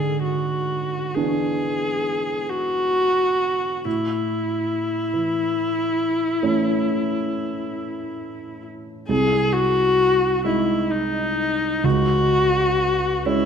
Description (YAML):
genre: classical, romantic duo for viola and grand piano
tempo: 42-48 BPM (dotted quarters)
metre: 12/8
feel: rubato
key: A major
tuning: A4 = 440 Hz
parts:
  - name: rich viola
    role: melody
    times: 0.0-13.5 s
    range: D#4 to G#4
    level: -21 LUFS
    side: left 2 dB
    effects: none
  - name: dark baby grand piano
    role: accompaniment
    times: 0.0-13.5 s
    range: B#1 to D#4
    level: -24 LUFS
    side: right 3 dB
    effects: none
room: wet concert hall reverb, RT60 1.8 s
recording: dark, warm production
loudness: -19 LUFS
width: side -7 dB against mid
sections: 0.0-13.5 A section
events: none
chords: 0.0 E7/G#; 3.9 A; 9.1 G#7/B#; 11.8 C#5